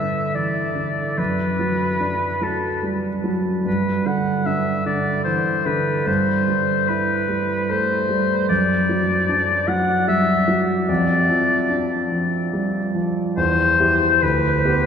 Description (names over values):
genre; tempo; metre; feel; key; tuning
classical, romantic duo for oboe and grand piano; 73 BPM; 3/4; rubato; G major; A4 = 437 Hz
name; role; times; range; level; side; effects
warm oboe; melody; 0.0-14.9 s; A4 to F#5; -20 LUFS; left 2 dB; none
warm grand piano; accompaniment; 0.0-14.9 s; D2 to G4; -21 LUFS; right 1 dB; none
room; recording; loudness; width
wet cathedral reverb, RT60 6.3 s; heard from further back in the room; -18 LUFS; side -7 dB against mid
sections
0.0-14.9 A section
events
none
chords
0.0 G5; 1.2 D/F#; 3.7 G5; 6.1 Am7/G; 8.5 D/F#; 10.9 G5/F; 13.4 C/E; 14.2 G/D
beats
0.35 | 1.19 2.02 2.84 | 3.67 4.47 5.27 | 6.08 6.89 7.71 | 8.50 9.29 10.09 | 10.89 11.71 12.54 | 13.37 14.22